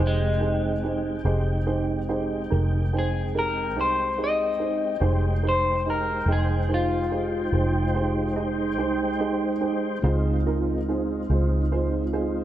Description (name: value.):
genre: slow blues.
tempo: 48 BPM (dotted quarters).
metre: 12/8.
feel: straight.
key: F minor.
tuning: A4 = 439 Hz.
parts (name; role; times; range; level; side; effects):
dark upright piano; accompaniment; 0.0-12.4 s; Eb4 to G5; -29 LUFS; right 4 dB; analog chorus.
mellow tonewheel organ; sustained chords; 0.0-12.4 s; Ab3 to G5; -29 LUFS; right 1 dB; slow rotary speaker, chorus vibrato.
vintage muted fingered electric bass; bass; 0.0-12.4 s; F1 to Db2; -25 LUFS; equal; none.
electric guitar through a small old amp; melody; 0.1-8.3 s; Ab3 to Eb5; -27 LUFS; left 2 dB; none.
room: moderate plate reverb, RT60 3.0 s.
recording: dreamy mix soaked in reverb.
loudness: -22 LUFS.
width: side -12 dB against mid.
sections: 0.0-12.4 A section.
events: clean electric guitar solo 0.0-12.4.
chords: 0.0 Fm7; 10.0 Dbmaj7.